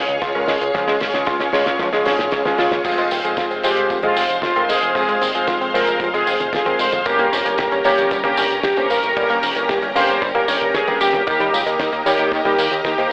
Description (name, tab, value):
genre	italo disco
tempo	114 BPM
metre	4/4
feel	straight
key	F minor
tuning	A4 = 444 Hz
part	string machine, full ensemble	sustained chords	0.0-13.1 s	Ab3 to Db6	-23 LUFS	equal	ensemble chorus
part	fat analog bass	bass	0.0-13.1 s	Eb1 to Eb2	-27 LUFS	equal	tube saturation
part	damped 70s drum kit	drums	0.1-13.1 s	crash cymbal, hi-hat, snare drum, tambourine, toms	-25 LUFS	equal	small room ambience
part	analog pluck	arpeggios	0.2-13.1 s	Eb3 to Db5	-23 LUFS	equal	chorus, tape echo
part	kick drum	drums	0.2-13.0 s	none	-29 LUFS	equal	small room ambience
part	warm electric grand piano	stabs	0.4-13.1 s	Ab3 to Db5	-21 LUFS	equal	low-pass filter
part	analog synth brass	melody	2.8-13.1 s	F4 to C5	-20 LUFS	equal	chorus, tape echo
room	light reverb, studio ambience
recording	dry, gritty hardware recording, transformer saturation, telephone sound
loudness	-15 LUFS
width	side -34 dB against mid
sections	0.0-2.9 A section; 2.9-13.1 B section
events	drum fill 0.0-2.9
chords	0.0 Db; 2.9 Fm; 7.1 Gdim; 11.3 Eb